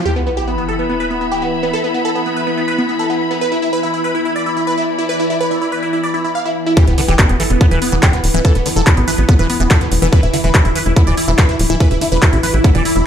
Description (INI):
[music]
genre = psychedelic trance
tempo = 143 BPM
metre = 4/4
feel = straight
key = unclear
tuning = A4 = 441 Hz
[part]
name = evolving wavetable pad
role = sustained chords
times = 0.0-13.1 s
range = E3 to E4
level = -21 LUFS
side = left 1 dB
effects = chorus, built-in reverb, sidechain pumping
[part]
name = warm chamber string section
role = texture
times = 0.0-6.8 s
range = B3 to B5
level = -22 LUFS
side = left 2 dB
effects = sidechain pumping
[part]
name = supersaw stab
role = melody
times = 0.1-13.0 s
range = B3 to F5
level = -19 LUFS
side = right 1 dB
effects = phaser, sidechain pumping, tape echo
[part]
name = sub drop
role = sound effects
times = 0.1-1.7, 6.8-8.4 s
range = none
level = -22 LUFS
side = equal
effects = none
[part]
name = liquid acid bass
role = riff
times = 6.8-12.8 s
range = D3 to B3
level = -22 LUFS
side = moving between left 5 dB and right 4 dB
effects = phaser, auto-pan, sidechain pumping, tape echo
[part]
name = drum and bass drum kit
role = drums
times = 6.8-13.0 s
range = handclaps, hi-hat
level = -19 LUFS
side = equal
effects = overdrive, low-pass filter on hats, low-pass filter on cymbals, low-pass filter on snare
[part]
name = electronic kick drum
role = drums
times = 6.8-12.7 s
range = none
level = -11 LUFS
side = equal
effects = overdrive
[part]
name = tight sequencer bass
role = bass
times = 6.9-13.0 s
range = D1 to A1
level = -16 LUFS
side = equal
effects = none
[sound]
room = light reverb, digital ambience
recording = played on a big sound system in a bare room, large studio reverb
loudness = -12 LUFS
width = side -9 dB against mid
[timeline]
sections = 0.1-6.8 A section; 6.8-13.1 B section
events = impact 0.1-1.7, 6.8-8.4; drop 6.8-13.1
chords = 0.1 E5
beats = | 0.06 0.47 0.90 1.31 | 1.73 2.15 2.57 2.99 | 3.41 3.83 4.25 4.67 | 5.09 5.51 5.93 6.35 | 6.77 7.19 7.61 8.03 | 8.45 8.87 9.29 9.71 | 10.13 10.54 10.96 11.38 | 11.80 12.22 12.64 13.06